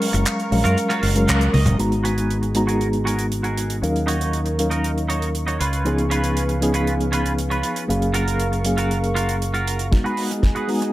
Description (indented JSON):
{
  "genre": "nu-disco, nu disco",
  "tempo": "118 BPM",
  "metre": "4/4",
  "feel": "straight",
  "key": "G# dorian",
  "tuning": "A4 = 439 Hz",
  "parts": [
    { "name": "reed electric piano", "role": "accompaniment", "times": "0.0-10.9 s", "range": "E#3 to A#5", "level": "-22 LUFS", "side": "equal", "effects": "fast tremolo, low-pass filter, analog delay" },
    { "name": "lush unison pad", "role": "sustained chords", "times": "0.0-10.9 s", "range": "G#4 to C#6", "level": "-31 LUFS", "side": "right 1 dB", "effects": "chorus, sidechain pumping" },
    { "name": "damped 70s drum kit", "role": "drums", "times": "0.0-10.9 s", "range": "handclaps, hi-hat, snare drum, toms", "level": "-27 LUFS", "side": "right 2 dB", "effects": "small room ambience" },
    { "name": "twelve-string electric guitar", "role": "riff", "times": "0.1-10.8 s", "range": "C#4 to F#5", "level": "-27 LUFS", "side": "right 2 dB", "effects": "lush chorus, low-pass filter, analog delay" },
    { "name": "fingered electric bass with an envelope filter", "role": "bass", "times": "0.1-9.9 s", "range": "F#1 to F#2", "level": "-23 LUFS", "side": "equal", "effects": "sidechain pumping" },
    { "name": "cabasa", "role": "percussion", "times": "0.1-1.8 s", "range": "none", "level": "-37 LUFS", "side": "left 4 dB", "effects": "none" },
    { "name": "kick drum", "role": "drums", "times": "9.9-10.5 s", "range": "none", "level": "-16 LUFS", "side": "equal", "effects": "small room ambience" }
  ],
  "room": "light reverb, small room ambience",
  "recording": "echo-heavy mix",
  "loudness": "-18 LUFS",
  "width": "side -16 dB against mid",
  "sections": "0.0-1.8 A section; 1.8-9.9 B section; 9.9-10.9 C section",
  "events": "break 0.0-1.8; clean electric guitar fill 0.8-1.8; band accent 1.3; drum fill 1.5, 9.9-10.9; filter sweep on analog synth pad 1.8-9.9; build-up 9.9-10.9; filter sweep on reed electric piano 9.9-10.9",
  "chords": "0.0 F#maj7; 1.8 G#m7; 3.8 D#m7; 5.6 C#7; 7.9 F#maj7; 9.9 G#m7",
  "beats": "0.27 0.77 1.28 | 1.79 2.30 2.81 3.32 | 3.82 4.33 4.84 5.35 | 5.86 6.37 6.88 7.38 | 7.89 8.40 8.91 9.42 | 9.93 10.44"
}